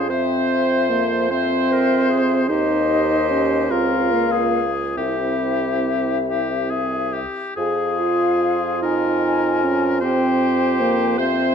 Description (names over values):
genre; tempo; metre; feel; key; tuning
classical, slow romantic movement for wind quintet; 45-53 BPM (dotted quarters); 6/8; rubato; unclear; A4 = 440 Hz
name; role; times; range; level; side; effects
mellow wooden flute; melody; 0.0-11.5 s; Eb5 to Ab5; -24 LUFS; left 11 dB; none
clear oboe; second line; 0.0-11.5 s; G4 to C5; -25 LUFS; left 3 dB; none
clear clarinet; accompaniment; 0.0-11.5 s; E4 to C5; -26 LUFS; right 11 dB; none
mellow French horn; accompaniment; 0.0-11.5 s; Bb3 to Ab4; -22 LUFS; right 1 dB; none
mellow bassoon; bass; 0.0-11.5 s; C2 to F2; -24 LUFS; right 3 dB; none
room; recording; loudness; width
moderate recital hall reverb, RT60 1.6 s; none; -17 LUFS; side -7 dB against mid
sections
0.0-11.5 A section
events
none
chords
0.1 C/F; 2.5 Cm/Eb; 3.7 Bbm/Db; 5.0 C; 7.6 Fm; 10.0 C/F